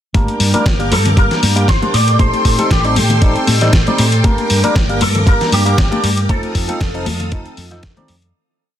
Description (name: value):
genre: nu-disco, nu disco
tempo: 117 BPM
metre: 4/4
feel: swing 54% on 16ths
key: G minor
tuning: A4 = 445 Hz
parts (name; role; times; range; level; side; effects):
- barky tine electric piano; accompaniment; 0.1-8.1 s; F3 to D5; -20 LUFS; equal; phaser, dub echo
- string machine, full ensemble; sustained chords; 0.1-8.3 s; A4 to Eb6; -23 LUFS; equal; ensemble chorus, sidechain pumping
- hollow-body short-scale fingered electric bass; bass; 0.1-8.3 s; F1 to A2; -17 LUFS; equal; none
- dusty soul sampler-style drum kit; drums; 0.1-8.3 s; hi-hat, snare drum; -20 LUFS; left 1 dB; none
- electronic kick drum; drums; 0.1-7.9 s; none; -14 LUFS; equal; none
- congas; percussion; 0.1-8.1 s; none; -23 LUFS; left 4 dB; none
- electric guitar with an envelope filter; melody; 0.9-8.1 s; G4 to D5; -20 LUFS; equal; ensemble chorus, ping-pong delay
room: digital ambience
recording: dense, heavily limited modern master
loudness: -11 LUFS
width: side -11 dB against mid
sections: 0.1-8.3 groove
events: fade-out 5.6-8.3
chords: 0.1 Gm; 1.9 Am7b5; 4.2 Gm; 6.3 F7